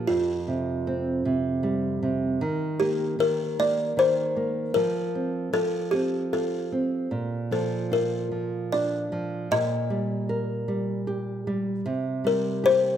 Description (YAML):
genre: children's music, lullaby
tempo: 77 BPM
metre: 3/4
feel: rubato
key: unclear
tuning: A4 = 441 Hz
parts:
  - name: buzzing kalimba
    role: melody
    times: 0.0-13.0 s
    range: F4 to Eb5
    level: -25 LUFS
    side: left 2 dB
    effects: none
  - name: nylon-string guitar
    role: accompaniment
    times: 0.0-13.0 s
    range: F2 to Bb4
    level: -27 LUFS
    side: right 2 dB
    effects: none
room: moderate recital hall reverb, RT60 1.5 s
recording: none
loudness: -24 LUFS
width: side -10 dB against mid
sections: 0.0-13.0 A section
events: none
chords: 0.1 Fsus2; 2.4 Eb5; 4.8 F5; 7.1 Bb; 9.5 Eb/Bb; 11.9 C5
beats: | 0.08 0.86 1.64 | 2.41 3.20 3.98 | 4.75 5.54 6.33 | 7.12 7.92 8.72 | 9.51 10.29 11.07 | 11.85 12.63